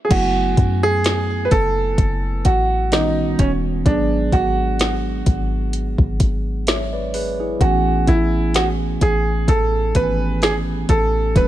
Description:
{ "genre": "contemporary R&B", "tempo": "64 BPM", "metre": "4/4", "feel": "swing 54% on 16ths", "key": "unclear", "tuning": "A4 = 440 Hz", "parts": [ { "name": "clear concert grand piano", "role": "melody", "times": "0.0-11.5 s", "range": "C#4 to B4", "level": "-20 LUFS", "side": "right 2 dB", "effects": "digital delay" }, { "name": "mellow tine electric piano", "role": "accompaniment", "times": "0.1-11.5 s", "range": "D#3 to G#5", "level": "-24 LUFS", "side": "right 2 dB", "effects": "wide subtle chorus" }, { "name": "soft 808-style bass", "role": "bass", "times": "0.1-11.5 s", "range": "D1 to F#2", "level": "-22 LUFS", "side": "equal", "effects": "none" }, { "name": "smooth R&B drum kit", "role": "drums", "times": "0.1-11.5 s", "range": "crash cymbal, hi-hat, kick drum, snare drum", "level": "-18 LUFS", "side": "equal", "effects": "vintage 12-bit sampler grit" } ], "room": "little or no reverb", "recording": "none", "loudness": "-16 LUFS", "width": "side -13 dB against mid", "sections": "0.1-11.5 A section", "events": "none", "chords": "0.1 F#m11; 2.9 D#7alt; 3.9 G#m7b5; 7.6 Amaj9" }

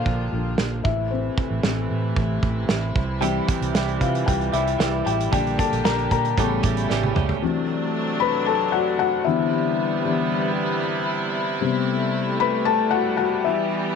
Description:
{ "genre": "piano-driven pop", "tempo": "114 BPM", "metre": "4/4", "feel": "straight", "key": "D mixolydian from 7.4 s", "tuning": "A4 = 440 Hz", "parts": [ { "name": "felt-muted upright piano", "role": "accompaniment", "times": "0.0-14.0 s", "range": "C3 to B5", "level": "-23 LUFS", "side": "left 9 dB", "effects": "none" }, { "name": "warm studio string section", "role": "sustained chords", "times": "0.0-14.0 s", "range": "C3 to G4", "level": "-26 LUFS", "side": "right 2 dB", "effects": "none" }, { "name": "vintage muted fingered electric bass", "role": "bass", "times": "0.1-7.4 s", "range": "A1 to C3", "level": "-26 LUFS", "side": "right 3 dB", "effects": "none" }, { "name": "loose indie drum kit", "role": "drums", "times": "0.1-7.4 s", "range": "hi-hat, kick drum, snare drum, toms", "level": "-24 LUFS", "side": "right 3 dB", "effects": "none" }, { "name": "direct-recorded clean electric guitar", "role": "riff", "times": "3.2-7.4 s", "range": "A2 to G4", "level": "-27 LUFS", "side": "right 16 dB", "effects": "lush chorus" } ], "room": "light reverb, studio ambience", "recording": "1960s-style stereo with parts hard left and right", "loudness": "-20 LUFS", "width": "side -6 dB against mid", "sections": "0.0-7.4 A section; 7.4-14.0 B section", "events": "felt piano solo 0.0-7.4, 7.4-14.0; drum fill 6.9-7.4", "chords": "0.0 Bb; 0.9 Am; 3.0 C; 5.3 Gm/Bb; 6.4 A7; 7.4 D7; 9.3 Cmaj7; 11.6 Am7" }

